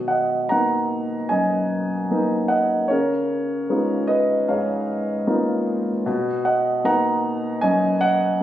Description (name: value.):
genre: classical, lyrical solo piano.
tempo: 76 BPM.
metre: 4/4.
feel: rubato.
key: B lydian.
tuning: A4 = 442 Hz.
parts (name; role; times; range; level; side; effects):
warm concert grand piano; solo; 0.0-8.4 s; F#2 to A#5; -19 LUFS; equal; none.
room: light reverb.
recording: recorded on a phone in the room, studio reverb, compression.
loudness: -19 LUFS.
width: side -12 dB against mid.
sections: 0.0-8.4 A section.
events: none.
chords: 0.0 Bmaj7; 2.9 C#13; 6.1 Bmaj7.